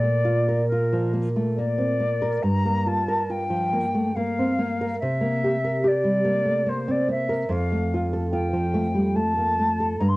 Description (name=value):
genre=romantic duo for flute and classical guitar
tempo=71 BPM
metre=3/4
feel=rubato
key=unclear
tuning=A4 = 440 Hz
part: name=concert flute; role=melody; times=0.0-10.2 s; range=Bb4 to C6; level=-25 LUFS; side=left 1 dB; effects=cassette tape
part: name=nylon-string guitar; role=accompaniment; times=0.0-10.2 s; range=F2 to Bb4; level=-22 LUFS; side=equal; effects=none
room=wet booth ambience, RT60 0.2 s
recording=home recording on cassette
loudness=-21 LUFS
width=side -20 dB against mid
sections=0.0-10.2 A section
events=none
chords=0.0 Bb; 2.4 Gm7; 5.0 C7; 7.5 F